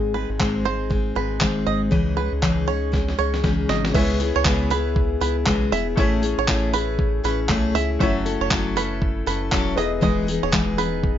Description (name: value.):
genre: acoustic pop.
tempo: 118 BPM.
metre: 4/4.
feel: swing 60% on 16ths.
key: C# minor.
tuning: A4 = 441 Hz.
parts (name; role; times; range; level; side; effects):
picked steel-string acoustic guitar; accompaniment; 0.0-11.2 s; G#2 to A4; -23 LUFS; left 4 dB; plate reverb.
round analog bass; bass; 0.0-11.2 s; E1 to C#2; -26 LUFS; right 1 dB; none.
bluegrass banjo; arpeggios; 0.1-11.2 s; B4 to E5; -26 LUFS; right 12 dB; plate reverb.
dusty soul sampler-style drum kit; drums; 0.4-11.2 s; crash cymbal, handclaps, kick drum, snare drum, tambourine; -23 LUFS; right 1 dB; none.
bright upright piano; accompaniment; 3.9-11.2 s; A3 to D#5; -30 LUFS; left 4 dB; plate reverb.
room: light reverb.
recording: nothing above 7.5 kHz.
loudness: -19 LUFS.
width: side -10 dB against mid.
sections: 0.0-3.9 A section; 3.9-11.2 B section.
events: drum fill 2.9-3.9.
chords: 0.0 G#; 1.9 C#madd9; 3.9 C#m7; 6.0 Amaj7; 8.0 F#m7; 9.8 Emaj7.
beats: 0.40 0.91 1.41 | 1.92 2.43 2.94 3.44 | 3.95 4.46 4.96 5.47 | 5.97 6.48 6.99 7.49 | 8.00 8.51 9.01 9.52 | 10.03 10.53 11.04.